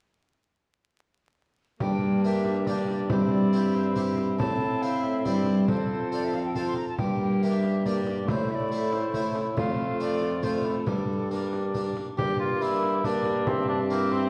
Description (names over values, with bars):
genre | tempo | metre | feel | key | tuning
classical, renaissance-style consort dance | 139 BPM | 3/4 | straight | G dorian | A4 = 440 Hz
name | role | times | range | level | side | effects
alto recorder | melody | 1.8-14.3 s | G4 to C6 | -38 LUFS | equal | none
mellow cor anglais | second line | 1.8-14.3 s | Bb3 to A4 | -35 LUFS | equal | none
harpsichord | accompaniment | 1.8-14.3 s | F2 to C5 | -31 LUFS | equal | none
warm viola | accompaniment | 1.8-14.3 s | G3 to C4 | -36 LUFS | equal | none
mellow bassoon | bass | 1.8-14.3 s | F2 to A2 | -32 LUFS | equal | none
frame drum | percussion | 1.8-14.3 s | none | -37 LUFS | equal | none
room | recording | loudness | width
wet recital hall reverb, RT60 1.6 s | heard from further back in the room, vinyl crackle | -26 LUFS | mono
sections
1.8-12.2 A section; 12.2-14.3 A section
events
none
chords
1.8 Gm; 3.1 C/G; 4.4 Am; 5.7 F; 7.0 Gm; 8.3 Am; 9.6 F; 10.9 Gm; 13.5 C/G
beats
| 1.80 2.24 2.67 | 3.10 3.53 3.96 | 4.39 4.82 5.25 | 5.69 6.12 6.55 | 6.99 7.42 7.85 | 8.28 8.71 9.14 | 9.57 10.00 10.43 | 10.87 11.30 11.74 | 12.18 12.61 13.04 | 13.47 13.90